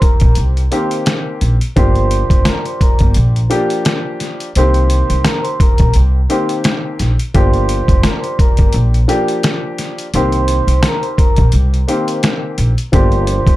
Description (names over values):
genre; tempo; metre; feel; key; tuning
hip hop, boom-bap hip-hop; 86 BPM; 4/4; swing 54% on 16ths; unclear; A4 = 439 Hz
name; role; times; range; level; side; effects
vibraphone with soft mallets; melody; 0.0-13.6 s; G4 to C6; -21 LUFS; right 1 dB; high-pass filter, low-pass filter, ping-pong delay
warm upright piano; accompaniment; 0.0-13.6 s; Eb3 to G4; -20 LUFS; left 2 dB; high-pass filter, low-pass filter
trip hop sampler-style drum kit; drums; 0.0-13.6 s; hi-hat, kick drum, rim click, snare drum; -14 LUFS; equal; none
upright bass; bass; 0.2-13.6 s; F1 to C2; -13 LUFS; equal; none
room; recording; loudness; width
little or no reverb; dark, warm production; -11 LUFS; side -16 dB against mid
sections
0.0-13.6 A section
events
none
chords
0.0 Cm7; 1.8 Gm7; 4.6 Cm7; 7.3 Gm7; 10.1 Cm7; 12.9 Gm7